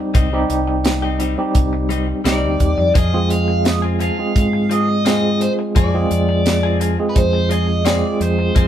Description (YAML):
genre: straight-eighth soul blues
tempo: 86 BPM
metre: 4/4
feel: straight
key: unclear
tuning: A4 = 438 Hz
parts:
  - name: barky tine electric piano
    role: accompaniment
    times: 0.0-8.7 s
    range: G3 to Ab4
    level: -20 LUFS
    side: right 2 dB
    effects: overdrive, fast tremolo
  - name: direct-recorded clean electric guitar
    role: stabs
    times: 0.1-8.7 s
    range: F3 to Ab4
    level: -28 LUFS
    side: left 6 dB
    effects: spring reverb
  - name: deep dub fingered electric bass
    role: bass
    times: 0.1-8.7 s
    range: C2 to Ab2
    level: -19 LUFS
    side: equal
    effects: none
  - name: tight funk drum kit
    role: drums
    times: 0.1-8.7 s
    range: hi-hat, kick drum, snare drum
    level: -18 LUFS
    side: equal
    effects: none
  - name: overdriven electric guitar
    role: melody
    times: 2.3-8.7 s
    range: B4 to F5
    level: -21 LUFS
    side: equal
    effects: phaser
room: moderate studio reverb, RT60 0.7 s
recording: band playing live in one room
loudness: -15 LUFS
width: side -10 dB against mid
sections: 0.0-8.7 A section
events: none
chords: 0.0 Cm; 3.0 Fm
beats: | 0.15 0.85 1.55 2.25 | 2.95 3.65 4.36 5.06 | 5.76 6.46 7.16 7.86 | 8.56